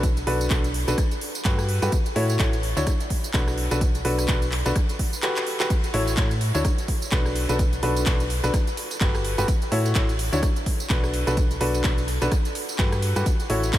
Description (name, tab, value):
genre	piano house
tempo	127 BPM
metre	4/4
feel	swing 58% on 16ths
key	unclear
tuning	A4 = 440 Hz
part	bright upright piano	riff	0.0-13.8 s	D4 to C#5	-26 LUFS	left 1 dB	sidechain pumping, analog delay
part	solid FM bass	bass	0.0-13.8 s	G1 to A2	-25 LUFS	equal	sidechain pumping
part	electronic kick drum	drums	0.0-13.8 s	none	-23 LUFS	equal	small room ambience
part	house drum kit	drums	0.0-13.8 s	handclaps, hi-hat, rim click, tambourine	-29 LUFS	right 1 dB	small room ambience
part	dusty soul sampler-style drum kit	drums	5.7-13.8 s	hi-hat, snare drum	-42 LUFS	right 1 dB	none
room	light reverb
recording	none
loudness	-21 LUFS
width	side -13 dB against mid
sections	0.0-13.8 A section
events	drum fill 5.3-5.7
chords	0.0 Bm7; 1.0 Gmaj9; 1.9 A6; 2.6 D; 3.6 Bm7; 4.8 Gmaj9; 5.7 A6; 6.4 D; 7.4 Bm7; 8.5 Gmaj9; 9.5 A6; 10.2 D; 11.1 Bm7; 12.3 Gmaj9; 13.3 A6